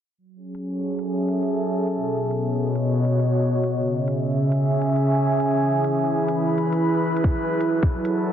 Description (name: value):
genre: future garage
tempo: 136 BPM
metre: 4/4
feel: swing 66% on 16ths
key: F# dorian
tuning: A4 = 440 Hz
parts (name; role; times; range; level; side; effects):
- airy breathy pad; sustained chords; 0.2-8.3 s; B2 to B5; -20 LUFS; equal; chorus, sidechain pumping
- electronic hi-hat; drums; 0.5-8.1 s; none; -47 LUFS; right 1 dB; small room ambience
- electronic kick drum; drums; 7.2-7.9 s; none; -20 LUFS; equal; small room ambience
room: wet recital hall reverb, RT60 1.6 s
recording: dense, heavily limited modern master, low-pass filter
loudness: -20 LUFS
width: side -9 dB against mid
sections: 0.2-8.3 A section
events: filter sweep on analog synth pad 0.2-8.3; filter sweep 0.2-8.3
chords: 0.2 F#m7; 1.9 Badd9; 3.7 C#m; 5.5 E; 7.2 F#m7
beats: | 0.18 0.62 1.06 1.51 | 1.95 2.39 2.83 3.27 | 3.71 4.15 4.59 5.04 | 5.48 5.92 6.36 6.80 | 7.24 7.68 8.12